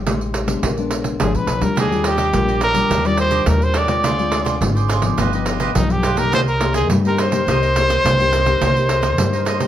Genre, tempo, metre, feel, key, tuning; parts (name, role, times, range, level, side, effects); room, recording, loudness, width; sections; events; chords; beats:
samba and choro; 105 BPM; 4/4; straight; C minor; A4 = 440 Hz
warm trumpet; melody; 0.0-9.7 s; D#4 to D5; -19 LUFS; equal
nylon-string guitar; accompaniment; 0.0-9.7 s; G2 to G4; -22 LUFS; left 5 dB
upright bass; bass; 0.0-9.7 s; G1 to G2; -21 LUFS; equal
pandeiro; percussion; 0.1-9.7 s; -22 LUFS; right 4 dB
cavaquinho; accompaniment; 1.8-9.7 s; D4 to Eb5; -25 LUFS; right 5 dB
moderate studio reverb, RT60 0.8 s; -15 LUFS; side -11 dB against mid
0.0-9.7 A section
0.0 Fm9 (rootless); 0.6 Bb7b9; 1.8 Ebmaj9; 4.1 Dm7b5; 5.2 G7alt; 6.3 Cm7
0.06 0.63 1.20 | 1.77 2.34 2.91 3.48 | 4.05 4.62 5.19 5.76 | 6.33 6.90 7.47 8.04 | 8.61 9.18